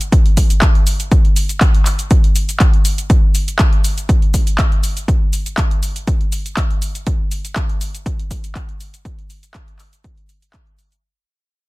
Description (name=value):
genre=house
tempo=121 BPM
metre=4/4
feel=straight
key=none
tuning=none
part: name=punchy analog drum machine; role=drums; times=0.0-11.0 s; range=handclaps, hi-hat, shaker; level=-22 LUFS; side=equal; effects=sidechain pumping on hats, sidechain pumping on perc
part: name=electronic kick drum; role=drums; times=0.1-10.6 s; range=none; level=-14 LUFS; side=equal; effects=overdrive
room=little or no reverb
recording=dense, heavily limited modern master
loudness=-13 LUFS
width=side -21 dB against mid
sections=0.0-11.0 A section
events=drop 0.0-11.0; fade-out 3.1-11.0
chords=none